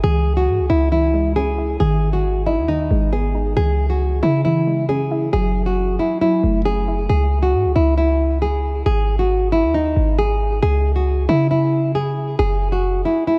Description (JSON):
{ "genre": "hip hop, trap", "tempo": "136 BPM", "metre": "4/4", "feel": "half-time", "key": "C# minor", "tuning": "A4 = 438 Hz", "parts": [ { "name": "nylon-string guitar", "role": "melody", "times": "0.0-13.4 s", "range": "D#4 to G#4", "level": "-22 LUFS", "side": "equal", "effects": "diffuse ambient delay" }, { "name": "soft round pluck", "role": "accompaniment", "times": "0.0-7.1 s", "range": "D#3 to E4", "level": "-27 LUFS", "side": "equal", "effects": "chorus, phaser" }, { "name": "warm 808-style bass", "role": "bass", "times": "0.0-13.0 s", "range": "F#1 to C#3", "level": "-21 LUFS", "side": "equal", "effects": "none" } ], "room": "moderate cathedral reverb, RT60 4.1 s", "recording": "dreamy mix soaked in reverb", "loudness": "-18 LUFS", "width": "mono", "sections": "0.0-7.1 A section; 7.1-13.4 B section", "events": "none", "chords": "0.0 C#m; 1.8 G#m; 3.6 C#m; 5.3 F#m7; 7.1 C#m; 8.9 G#5; 10.6 C#m; 12.4 Eadd9/F#", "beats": "| 0.04 0.48 0.92 1.36 | 1.80 2.24 2.69 3.13 | 3.57 4.01 4.45 4.89 | 5.33 5.77 6.21 6.66 | 7.10 7.54 7.98 8.42 | 8.86 9.30 9.74 10.19 | 10.63 11.07 11.51 11.95 | 12.39 12.83 13.27" }